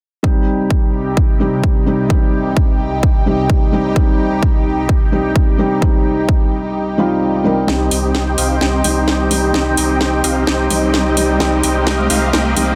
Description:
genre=EDM, festival progressive house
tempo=129 BPM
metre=4/4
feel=straight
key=C minor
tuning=A4 = 441 Hz
part: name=felt-muted upright piano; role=accompaniment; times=0.2-12.8 s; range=G3 to Bb4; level=-20 LUFS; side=equal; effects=sidechain pumping, delay
part: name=lush unison pad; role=sustained chords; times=0.2-12.8 s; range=C2 to G5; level=-25 LUFS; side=equal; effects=chorus, phaser, sidechain pumping
part: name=electronic kick drum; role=drums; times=0.2-6.4 s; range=none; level=-16 LUFS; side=equal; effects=none
part: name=dense compressed supersaw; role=riff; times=7.7-12.8 s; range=C4 to G5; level=-20 LUFS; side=equal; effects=sidechain pumping, low-pass filter, delay
part: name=saturated sub bass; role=bass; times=7.7-12.8 s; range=C2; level=-22 LUFS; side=equal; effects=sidechain pumping
part: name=house drum kit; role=drums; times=7.7-12.7 s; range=hi-hat, snare drum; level=-22 LUFS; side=equal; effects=none
part: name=riser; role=sound effects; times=9.7-12.8 s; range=none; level=-29 LUFS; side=equal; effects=none
room=light reverb, digital ambience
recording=dense, heavily limited modern master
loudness=-15 LUFS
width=mono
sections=0.2-7.7 A section; 7.7-12.8 B section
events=kick drops out 6.8-7.7; build-up 7.7-12.8; drum fill 7.7-12.8; filter sweep on supersaw synth 7.7-12.8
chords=0.2 Cm

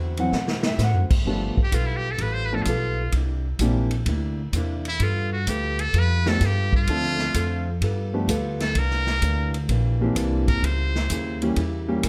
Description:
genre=jazz, big band swing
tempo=128 BPM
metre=4/4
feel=swing 68% on 8ths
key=unclear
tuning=A4 = 437 Hz
part: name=fingerpicked old ladder-braced acoustic guitar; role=accompaniment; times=0.0-12.1 s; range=C3 to A4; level=-35 LUFS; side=equal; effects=none
part: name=upright bass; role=bass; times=0.0-12.1 s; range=G1 to B2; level=-26 LUFS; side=equal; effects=none
part: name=warm concert grand piano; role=accompaniment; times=0.2-12.0 s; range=E3 to F#5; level=-28 LUFS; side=equal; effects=none
part: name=swinging big-band drum kit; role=drums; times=0.2-12.1 s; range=crash cymbal, hi-hat, kick drum, ride cymbal, snare drum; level=-29 LUFS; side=equal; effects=none
part: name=trumpet with metal mute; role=melody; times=1.6-11.4 s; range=E4 to C5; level=-29 LUFS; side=equal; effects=none
room=light reverb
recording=none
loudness=-23 LUFS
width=mono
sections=0.0-1.3 A section; 1.3-12.1 A section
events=grand piano solo 0.0-1.3; drum fill 0.3-0.8; muted trumpet solo 1.3-12.1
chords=0.0 D9; 1.3 G9; 3.1 C9; 5.0 G9; 6.9 Dm7; 7.8 G9; 8.8 C9; 10.6 C#dim7

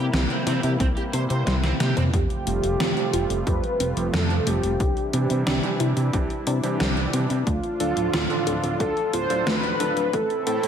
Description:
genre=synthwave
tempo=90 BPM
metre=4/4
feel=straight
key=unclear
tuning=A4 = 440 Hz
part: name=brassy analog pad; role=sustained chords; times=0.0-10.7 s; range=A2 to F4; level=-30 LUFS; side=left 1 dB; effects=chorus, sidechain pumping
part: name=crunchy overdriven guitar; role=riff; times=0.0-2.0 s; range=C4 to C5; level=-31 LUFS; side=right 3 dB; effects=ensemble chorus, tape echo
part: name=chorused synth bass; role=bass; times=0.0-10.7 s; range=D1 to C3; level=-25 LUFS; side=equal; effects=sidechain pumping
part: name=warbly dusty pluck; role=arpeggios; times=0.1-10.6 s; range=G3 to A4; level=-32 LUFS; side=left 2 dB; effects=chorus, tape echo
part: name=gated 80s digital drum machine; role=drums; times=0.1-10.7 s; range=hi-hat, snare drum, toms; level=-27 LUFS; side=equal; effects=gated reverb, gated reverb snare, overdrive
part: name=electronic kick drum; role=drums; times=0.8-10.3 s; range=none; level=-26 LUFS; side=equal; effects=overdrive
part: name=mellow synth brass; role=melody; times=2.1-10.7 s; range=F4 to C5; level=-26 LUFS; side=right 1 dB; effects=chorus, digital delay
part: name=clear electric grand piano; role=stabs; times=2.5-10.7 s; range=E3 to A4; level=-31 LUFS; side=right 5 dB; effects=low-pass filter, tape echo
room=light reverb, digital ambience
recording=high-pass filter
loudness=-21 LUFS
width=side -8 dB against mid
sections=0.0-2.1 A section; 2.1-10.7 B section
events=drum fill 1.5-2.1; filter sweep on electric grand piano 2.1-10.7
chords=0.0 C7; 2.1 Fadd9; 4.8 Cadd9; 7.5 Dm; 10.1 Am

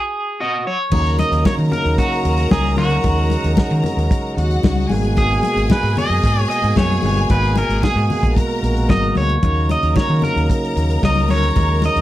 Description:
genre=disco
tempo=113 BPM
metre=4/4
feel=straight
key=Eb minor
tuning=A4 = 438 Hz
part: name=electric guitar at the edge of break-up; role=melody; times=0.0-12.0 s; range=Gb4 to Eb5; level=-21 LUFS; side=right 1 dB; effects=harmonic tremolo
part: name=clear studio string section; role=second line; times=0.9-12.0 s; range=Gb4 to Bb5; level=-25 LUFS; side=left 1 dB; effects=none
part: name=percussive tonewheel organ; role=sustained chords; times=0.9-12.0 s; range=Cb3 to Gb4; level=-23 LUFS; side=right 1 dB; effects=slow rotary speaker
part: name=overdriven fingered electric bass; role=bass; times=0.9-12.0 s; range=G1 to Eb3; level=-18 LUFS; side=equal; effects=tube saturation
part: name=warm soul drum kit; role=drums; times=0.9-12.0 s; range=crash cymbal, hi-hat, kick drum, snare drum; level=-18 LUFS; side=equal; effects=none
part: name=congas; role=percussion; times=0.9-11.9 s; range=none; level=-24 LUFS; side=left 5 dB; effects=none
room=little or no reverb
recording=dry, close 1970s-style studio recording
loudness=-15 LUFS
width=side -14 dB against mid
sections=0.9-12.0 A section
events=stop 0.0-0.9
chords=0.0 Ebm7; 4.9 Abm9; 9.4 Ebm7

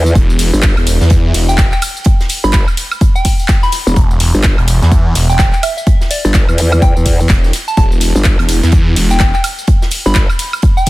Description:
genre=bass house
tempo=126 BPM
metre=4/4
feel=swing 60% on 16ths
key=E minor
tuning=A4 = 440 Hz
part: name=growl bass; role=bass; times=0.0-10.3 s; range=E1 to E2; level=-12 LUFS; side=equal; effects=chorus, overdrive, sidechain pumping
part: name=garage drum kit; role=drums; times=0.1-10.9 s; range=handclaps, hi-hat, ride cymbal, tambourine, woodblock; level=-19 LUFS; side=equal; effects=small room ambience
part: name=phased detuned saw bass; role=bass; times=0.2-9.3 s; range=E1 to E2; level=-12 LUFS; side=equal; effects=phaser, overdrive, sidechain pumping
part: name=electronic kick drum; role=drums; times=0.2-10.9 s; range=none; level=-11 LUFS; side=equal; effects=small room ambience
part: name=natural country drum kit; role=drums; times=0.2-10.9 s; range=hi-hat, snare drum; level=-28 LUFS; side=right 3 dB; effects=high-pass filter on hats, small room ambience, soft clipping on snare, high-pass filter on snare, high-pass filter on room
part: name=soft synth bell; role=melody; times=1.5-10.9 s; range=D5 to B5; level=-20 LUFS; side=equal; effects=chorus, phaser, dub echo
room=little or no reverb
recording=dense, heavily limited modern master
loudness=-9 LUFS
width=side -19 dB against mid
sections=0.0-10.9 A section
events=none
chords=0.0 E5

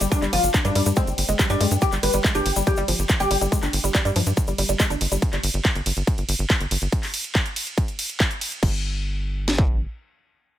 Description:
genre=psychedelic trance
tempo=141 BPM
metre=4/4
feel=straight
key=unclear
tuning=A4 = 440 Hz
part: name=woody wave-folded pluck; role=riff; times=0.0-5.2 s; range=F3 to D4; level=-27 LUFS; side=equal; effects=chorus, auto-pan, sidechain pumping, tape echo
part: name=tight sequencer bass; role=bass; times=0.0-9.9 s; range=G1 to G2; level=-24 LUFS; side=equal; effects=none
part: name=drum and bass drum kit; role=drums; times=0.0-8.7 s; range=crash cymbal, handclaps, hi-hat, ride cymbal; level=-26 LUFS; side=equal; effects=overdrive
part: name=egg shaker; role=percussion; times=0.0-5.2 s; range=none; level=-31 LUFS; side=left 4 dB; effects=none
part: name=oud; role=melody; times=0.1-3.4 s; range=G3 to B4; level=-25 LUFS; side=left 3 dB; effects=phaser, sidechain pumping, ping-pong delay
part: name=techno drum kit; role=drums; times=0.1-9.7 s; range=kick drum, snare drum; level=-21 LUFS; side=equal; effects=distortion, overdrive
room=little or no reverb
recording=none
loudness=-20 LUFS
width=side -12 dB against mid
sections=0.0-8.6 A section; 8.6-10.6 B section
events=drop 0.0-8.6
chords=0.0 G5; 8.6 N.C.

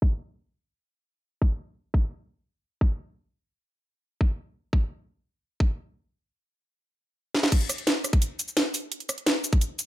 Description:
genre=drum and bass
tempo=172 BPM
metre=4/4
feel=straight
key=none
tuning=none
part: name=electronic kick drum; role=drums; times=0.0-9.6 s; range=none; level=-21 LUFS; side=equal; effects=overdrive, small room reverb
part: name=drum and bass drum kit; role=drums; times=7.3-9.9 s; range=crash cymbal, hi-hat, rim click, shaker, snare drum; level=-25 LUFS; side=equal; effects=overdrive, small room reverb
room=little or no reverb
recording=low-pass filter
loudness=-24 LUFS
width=side -15 dB against mid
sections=0.0-7.5 A section; 7.5-9.9 B section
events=filter sweep 0.0-7.5; drum fill 7.3; drop 7.5-9.9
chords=none

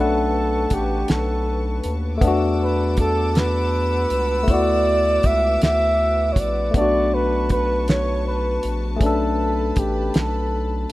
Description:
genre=slow six-eight R&B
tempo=53 BPM (dotted quarters)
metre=6/8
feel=straight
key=B minor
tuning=A4 = 441 Hz
part: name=breathy flugelhorn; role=melody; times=0.0-10.9 s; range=G4 to E5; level=-22 LUFS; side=right 2 dB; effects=slapback echo
part: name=barky tine electric piano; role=accompaniment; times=0.0-10.9 s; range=A3 to F#5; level=-24 LUFS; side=left 3 dB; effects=overdrive
part: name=warm studio string section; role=sustained chords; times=0.0-10.9 s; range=A4 to E6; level=-32 LUFS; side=left 3 dB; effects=none
part: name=round analog bass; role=bass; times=0.0-10.9 s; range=A1 to E2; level=-24 LUFS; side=equal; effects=none
part: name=cloth-damped thuddy drum kit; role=drums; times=0.7-10.9 s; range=hi-hat, kick drum, snare drum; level=-20 LUFS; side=equal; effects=none
room=little or no reverb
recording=rough home demo mix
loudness=-18 LUFS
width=side -17 dB against mid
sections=0.0-10.9 A section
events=none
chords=0.0 Bm9; 2.2 E9sus4; 4.5 D69; 6.7 Bm9

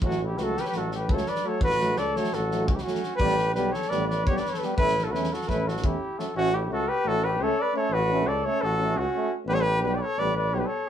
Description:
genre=balkan folk, Balkan brass band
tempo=343 BPM (eighths)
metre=9/8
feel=straight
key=unclear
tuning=A4 = 435 Hz
part: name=warm flugelhorn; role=second line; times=0.0-10.9 s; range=C#4 to B4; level=-31 LUFS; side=left 3 dB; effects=none
part: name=clear trombone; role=accompaniment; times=0.0-10.7 s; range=F#3 to A3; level=-33 LUFS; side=right 4 dB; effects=none
part: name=warm euphonium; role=accompaniment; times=0.0-10.9 s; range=A3 to C#4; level=-35 LUFS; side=left 2 dB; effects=none
part: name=warm tuba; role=bass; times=0.0-10.6 s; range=A1 to E2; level=-30 LUFS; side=equal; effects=none
part: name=loose indie drum kit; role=percussion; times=0.0-6.2 s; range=kick drum, snare drum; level=-30 LUFS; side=equal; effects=none
part: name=mellow cornet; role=melody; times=0.1-10.9 s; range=F#4 to D5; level=-27 LUFS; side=equal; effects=none
room=wet studio reverb, RT60 0.6 s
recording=band playing live in one room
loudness=-23 LUFS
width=side -9 dB against mid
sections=0.0-6.3 A section; 6.3-10.9 A section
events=none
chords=0.0 F#m/A; 3.2 A9; 4.8 A; 6.3 F#m/A; 9.5 Em/A (rootless)

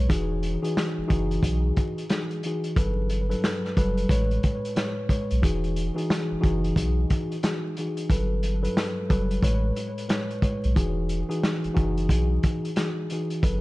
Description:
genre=hip hop, boom-bap hip-hop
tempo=90 BPM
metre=4/4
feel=swing 62% on 16ths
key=E major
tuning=A4 = 437 Hz
part: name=mellow tine electric piano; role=accompaniment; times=0.0-13.6 s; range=G2 to C#5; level=-27 LUFS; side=left 1 dB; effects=cassette tape, high-pass filter, low-pass filter, tape echo
part: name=soft dub sub bass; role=bass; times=0.0-13.6 s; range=E1 to B1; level=-26 LUFS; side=equal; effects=none
part: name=vintage drum kit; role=drums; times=0.1-13.6 s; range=hi-hat, kick drum, snare drum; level=-26 LUFS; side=equal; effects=none
room=light reverb, studio reverb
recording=echo-heavy mix, vinyl crackle, nothing above 10.4 kHz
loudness=-23 LUFS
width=side -19 dB against mid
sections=0.0-13.6 A section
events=none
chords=0.1 Emaj9; 2.8 Gmaj9; 4.1 Amaj9; 5.4 Emaj9; 8.1 Gmaj9; 9.4 Amaj9; 10.8 Emaj9

